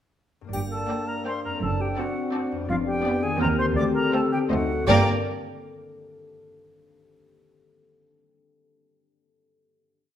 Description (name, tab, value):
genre	cinematic, playful, whimsical film cue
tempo	166 BPM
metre	3/4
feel	straight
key	G minor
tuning	A4 = 440 Hz
part	concert harp	arpeggios	0.4-5.1 s	F2 to D5	-32 LUFS	left 5 dB	none
part	dark clarinet	second line	0.5-5.0 s	F4 to D5	-31 LUFS	right 1 dB	none
part	silver concert flute	second line	0.5-5.1 s	F5 to D6	-31 LUFS	left 1 dB	none
part	dark French horn section	sustained chords	0.5-5.0 s	Bb3 to G4	-29 LUFS	left 3 dB	none
part	rich studio cello section	bass	0.5-5.1 s	D2 to G2	-29 LUFS	right 2 dB	none
part	rich studio double bass section	bass	0.5-5.1 s	F1 to Eb2	-29 LUFS	right 4 dB	none
part	triangle	percussion	0.5-1.2 s	none	-47 LUFS	left 3 dB	none
part	warm chamber violin section	melody	0.9-5.1 s	D5 to A5	-29 LUFS	left 2 dB	none
part	rich studio violin section	second line	0.9-5.1 s	Bb4 to D5	-34 LUFS	left 1 dB	none
part	clear studio viola section	accompaniment	0.9-5.1 s	A3 to C4	-31 LUFS	right 1 dB	none
room	wet recital hall reverb, RT60 1.4 s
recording	none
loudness	-22 LUFS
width	side -10 dB against mid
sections	0.5-4.9 A section; 4.9-6.0 final chord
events	none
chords	0.5 Gm; 1.6 D7/F#; 2.7 G7/F; 3.4 Cm/Eb; 3.8 D7sus4; 4.9 Gm